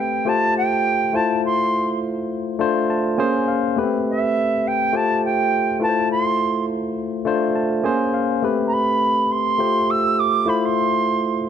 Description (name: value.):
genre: soul.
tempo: 103 BPM.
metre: 4/4.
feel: swing 54% on 16ths.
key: unclear.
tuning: A4 = 442 Hz.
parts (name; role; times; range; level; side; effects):
silver concert flute; melody; 0.0-11.5 s; E5 to E6; -20 LUFS; right 2 dB; none.
barky tine electric piano; accompaniment; 0.0-11.5 s; A3 to A5; -20 LUFS; moving between left 5 dB and right 2 dB; overdrive, auto-pan.
room: moderate echo chamber reverb, RT60 2.0 s, studio reverb.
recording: dark, warm production, nothing above 11.0 kHz.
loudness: -18 LUFS.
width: side -8 dB against mid.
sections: 0.0-11.5 A section.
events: tine electric piano fill 2.6-3.8, 7.3-8.4.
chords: 0.3 G9sus4; 1.1 Fmaj7; 2.6 Dm7; 3.2 Bbm9; 3.8 Am9; 4.9 G9sus4; 5.8 Fmaj7; 7.3 Dm7; 7.8 Bbm9; 8.4 Am9; 9.6 G9sus4; 10.5 Fmaj7.